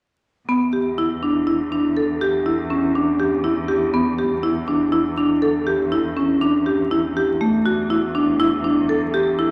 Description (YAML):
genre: contemporary instrumental, contemporary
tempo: 121 BPM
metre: 7/4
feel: straight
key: E dorian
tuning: A4 = 440 Hz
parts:
  - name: marimba with medium hard mallets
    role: arpeggios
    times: 0.5-9.5 s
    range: A3 to A4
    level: -20 LUFS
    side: equal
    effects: none
  - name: muted cello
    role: bass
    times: 0.5-9.5 s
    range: E2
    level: -31 LUFS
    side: equal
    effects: none
room: wet concert hall reverb, RT60 2.1 s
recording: vinyl crackle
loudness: -20 LUFS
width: mono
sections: 0.5-9.5 A section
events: none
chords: 0.5 Em7; 7.4 A5/E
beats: | 0.48 0.98 1.47 1.97 2.46 2.95 3.45 | 3.94 4.44 4.93 5.42 5.92 6.42 6.91 | 7.41 7.90 8.40 8.89 9.39